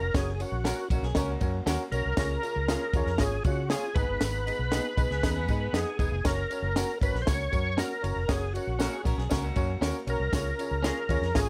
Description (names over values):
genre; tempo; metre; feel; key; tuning
uptempo 1960s-style soul; 118 BPM; 4/4; straight; F# major; A4 = 441 Hz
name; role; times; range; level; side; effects
overdriven tonewheel organ; melody; 0.0-11.5 s; F#4 to C#5; -34 LUFS; equal; chorus vibrato, slow rotary speaker
warm upright piano; accompaniment; 0.0-11.5 s; G#2 to C#5; -38 LUFS; equal; none
vintage muted fingered electric bass; bass; 0.0-11.5 s; E1 to C#3; -34 LUFS; equal; none
compact cocktail drum kit; drums; 0.1-11.5 s; kick drum, ride cymbal, snare drum; -32 LUFS; equal; none
tambourine; percussion; 0.2-11.5 s; none; -47 LUFS; equal; none
clean electric guitar; stabs; 0.6-11.0 s; B3 to A#4; -39 LUFS; equal; none
electric guitar through a small old amp; riff; 0.9-2.0, 5.1-10.2 s; A#3 to A#4; -43 LUFS; equal; spring reverb
room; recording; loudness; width
light reverb; none; -28 LUFS; mono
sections
0.0-11.5 A section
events
none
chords
0.0 F#; 2.2 C#; 4.0 G#m; 6.3 F#; 10.3 C#